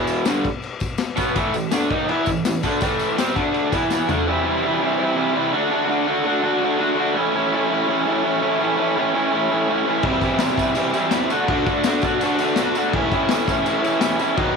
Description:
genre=garage rock duo or trio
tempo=166 BPM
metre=4/4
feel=straight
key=unclear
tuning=A4 = 437 Hz
part: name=raw garage guitar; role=riff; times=0.0-14.6 s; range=E2 to F#4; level=-18 LUFS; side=right 1 dB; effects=overdrive
part: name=crunchy breakbeat drum kit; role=drums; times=0.1-4.2, 10.0-14.5 s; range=crash cymbal, kick drum, snare drum, toms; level=-24 LUFS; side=left 4 dB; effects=none
part: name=tambourine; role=percussion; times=0.1-4.2, 10.2-14.4 s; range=none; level=-38 LUFS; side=right 12 dB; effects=none
room=light reverb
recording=1960s-style stereo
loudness=-18 LUFS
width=side -5 dB against mid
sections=0.0-4.3 A section; 4.3-14.6 B section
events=drum fill 3.9-4.3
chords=0.0 E5; 1.4 A5; 3.4 D5; 3.7 E5; 4.1 D5; 4.3 C; 5.5 D; 7.2 A; 10.0 C; 11.3 D; 12.9 A

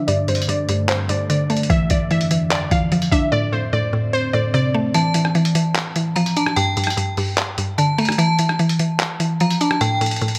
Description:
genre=hip hop, trap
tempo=148 BPM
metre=4/4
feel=half-time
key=D minor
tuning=A4 = 439 Hz
part: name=glassy wavetable pluck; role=melody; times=0.0-4.9 s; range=C5 to F5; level=-26 LUFS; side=equal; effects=chorus, low-pass filter, digital delay
part: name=mallet-like synth pluck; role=accompaniment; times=0.0-10.4 s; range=G2 to D4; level=-22 LUFS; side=equal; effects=chorus, low-pass filter
part: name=glassy FM pad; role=sustained chords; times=0.0-4.9 s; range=F2 to C4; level=-30 LUFS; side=equal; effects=ensemble chorus, built-in reverb, low-pass filter
part: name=lo-fi sampler-style drum kit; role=drums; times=0.1-10.4 s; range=handclaps, hi-hat, kick drum, rim click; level=-25 LUFS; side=equal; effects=overdrive
part: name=metallic FM bell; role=second line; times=4.9-10.4 s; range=G5 to Bb5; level=-26 LUFS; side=equal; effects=chorus, tremolo, digital delay
room=moderate plate reverb, RT60 2.1 s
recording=bright 1980s-style digital production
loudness=-19 LUFS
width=mono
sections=0.0-4.9 A section; 4.9-10.4 B section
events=filter sweep 0.0-4.9; kick muted 4.9-10.4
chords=0.1 Gsus2; 1.7 Dmadd9; 3.3 Am; 4.9 Dmadd9; 6.6 Gsus2; 8.2 Dmadd9; 9.8 N.C.

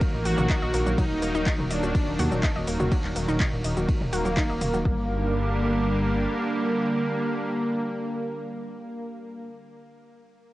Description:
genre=melodic techno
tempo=124 BPM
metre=4/4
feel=straight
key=G harmonic minor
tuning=A4 = 440 Hz
part: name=lush unison pad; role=sustained chords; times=0.0-9.5 s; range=D3 to Bb3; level=-29 LUFS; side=right 1 dB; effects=chorus, vintage 12-bit sampler grit, sidechain pumping
part: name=deep house drum kit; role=drums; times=0.0-4.8 s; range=handclaps, hi-hat, ride cymbal, shaker, toms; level=-32 LUFS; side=equal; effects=overdrive, sidechain pumping on perc, cassette tape, sidechain pumping on cymbals, sidechain pumping on toms, sidechain pumping on hats
part: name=electronic kick drum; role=drums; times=0.0-5.0 s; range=none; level=-25 LUFS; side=equal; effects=overdrive, cassette tape
part: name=dark detuned saw bass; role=bass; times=0.1-6.3 s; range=Eb1 to Eb2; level=-28 LUFS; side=equal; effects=sidechain pumping
part: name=soft supersaw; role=melody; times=0.3-9.5 s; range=Bb3 to Gb4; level=-30 LUFS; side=equal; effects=phaser, sidechain pumping, cassette tape, tape echo
part: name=wide unison pluck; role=arpeggios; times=0.3-5.1 s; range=Gb3 to Eb6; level=-32 LUFS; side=equal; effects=sidechain pumping, tape echo
room=moderate booth ambience, RT60 0.2 s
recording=home recording on cassette, nothing above 10.5 kHz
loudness=-23 LUFS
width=side -17 dB against mid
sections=0.0-4.9 A section; 4.9-8.7 B section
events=drop 0.0-4.9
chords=0.0 Ebm; 4.9 Gm

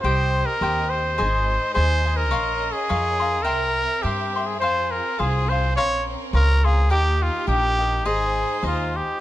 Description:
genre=mexican folk, mariachi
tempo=105 BPM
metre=2/4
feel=swing 54% on 8ths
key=Ab major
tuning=A4 = 440 Hz
part: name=clear trumpet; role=melody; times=0.0-9.2 s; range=F4 to Db5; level=-23 LUFS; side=equal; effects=plate reverb
part: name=cavaquinho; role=accompaniment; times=0.0-9.2 s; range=Eb4 to C6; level=-27 LUFS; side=left 3 dB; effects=none
part: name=bright studio violin section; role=sustained chords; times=0.0-9.2 s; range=Ab3 to E5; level=-33 LUFS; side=right 2 dB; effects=none
part: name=upright bass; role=bass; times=0.0-9.0 s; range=Ab1 to G2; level=-23 LUFS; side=equal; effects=none
room=light reverb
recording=close, detailed microphones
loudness=-19 LUFS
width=side -14 dB against mid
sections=0.0-9.2 A section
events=none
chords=0.0 Cm; 1.2 Ab; 2.3 Bbmadd9; 3.5 C7; 4.6 Fm; 5.8 Bbmadd9; 6.9 Eb; 8.0 Ab

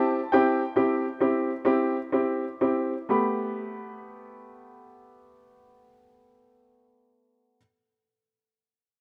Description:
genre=pop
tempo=40-47 BPM (dotted quarters)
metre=6/8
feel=straight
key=G major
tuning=A4 = 441 Hz
part: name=warm baby grand piano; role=melody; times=0.0-7.6 s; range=G5 to B5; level=-34 LUFS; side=equal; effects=none
part: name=clear upright piano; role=accompaniment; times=0.0-7.6 s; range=A3 to G4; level=-27 LUFS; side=equal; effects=none
room=moderate lush hall reverb, RT60 2.8 s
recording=rough home demo mix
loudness=-25 LUFS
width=mono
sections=0.0-3.1 A section; 3.1-6.1 B section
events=slowing down 0.0-3.1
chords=0.0 C; 3.1 Gadd9

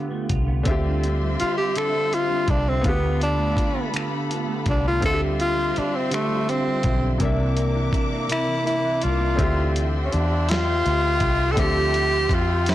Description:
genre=slow six-eight R&B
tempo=55 BPM (dotted quarters)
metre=6/8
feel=straight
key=D dorian, D minor from 9.4 s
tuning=A4 = 436 Hz
part: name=clean electric guitar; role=second line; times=0.0-10.0 s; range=C3 to F4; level=-29 LUFS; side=right 3 dB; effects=ensemble chorus
part: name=bright concert grand piano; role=accompaniment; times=0.0-12.7 s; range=C3 to E5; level=-30 LUFS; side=left 3 dB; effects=none
part: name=vintage muted fingered electric bass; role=bass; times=0.3-12.7 s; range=B1 to F2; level=-23 LUFS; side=equal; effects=none
part: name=dusty soul sampler-style drum kit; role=drums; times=0.3-12.7 s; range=finger snaps, hi-hat, kick drum, snare drum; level=-26 LUFS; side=equal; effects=soft clipping on snare
part: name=warm studio string section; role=sustained chords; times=0.7-12.7 s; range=F4 to D6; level=-31 LUFS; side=equal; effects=none
part: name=breathy tenor saxophone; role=melody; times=1.4-12.7 s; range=A3 to A4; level=-23 LUFS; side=equal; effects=slapback echo
room=light reverb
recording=blown-out, overdriven recording, overdrive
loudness=-20 LUFS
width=side -14 dB against mid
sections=0.0-9.4 A section; 9.4-12.7 B section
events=tenor saxophone solo 0.0-9.4; kick muted 8.3-9.4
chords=0.0 G9; 0.7 Dm11; 2.8 G9; 5.0 Dm11; 7.2 C9; 9.4 Dm11

